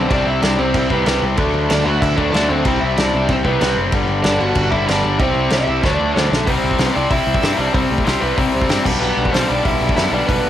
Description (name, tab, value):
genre	punk rock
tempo	189 BPM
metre	4/4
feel	straight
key	unclear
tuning	A4 = 439 Hz
part	lead guitar through a small cranked amp	melody	0.0-10.5 s	G3 to F#5	-20 LUFS	equal	overdrive, cassette tape
part	overdriven electric guitar	riff	0.0-10.5 s	G2 to D4	-20 LUFS	left 7 dB	none
part	overdriven electric guitar	riff	0.0-10.5 s	G2 to E4	-23 LUFS	right 8 dB	none
part	modern bright picked electric bass	bass	0.0-10.5 s	F#1 to G2	-22 LUFS	equal	none
part	loose indie drum kit	drums	0.1-10.4 s	crash cymbal, hi-hat, kick drum, snare drum	-21 LUFS	equal	none
room	little or no reverb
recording	home recording on cassette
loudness	-14 LUFS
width	side -11 dB against mid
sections	0.0-6.5 A section; 6.5-10.5 B section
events	drum fill 5.8-6.5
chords	0.1 C; 1.4 D; 2.7 C; 3.9 G; 5.2 C; 5.8 D; 6.5 C; 8.9 G/B